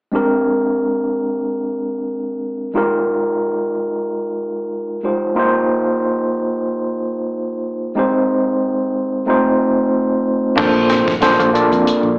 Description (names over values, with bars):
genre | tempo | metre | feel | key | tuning
electric jazz fusion | 92 BPM | 4/4 | swing 55% on 16ths | Bb mixolydian | A4 = 440 Hz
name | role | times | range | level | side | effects
overdriven tine electric piano | accompaniment | 0.1-12.2 s | Ab3 to D5 | -15 LUFS | equal | fast tremolo, slapback echo
semi-hollow electric guitar | stabs | 10.6-11.6 s | Bb3 to D4 | -22 LUFS | equal | none
modern bright fingered electric bass | bass | 10.6-12.2 s | Bb1 to F2 | -23 LUFS | equal | none
crisp fusion drum kit | drums | 10.6-12.0 s | crash cymbal, hi-hat, kick drum, snare drum | -22 LUFS | equal | none
room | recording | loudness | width
moderate club reverb, RT60 0.7 s | live gig heard through the venue's PA, club reverb, AM radio sound | -15 LUFS | side -30 dB against mid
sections
0.1-10.6 A section; 10.6-12.2 B section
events
none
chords
0.1 Bb13; 2.8 Fm11; 5.4 Eb69; 8.0 Abmaj7; 9.3 F7; 10.6 Bbmaj9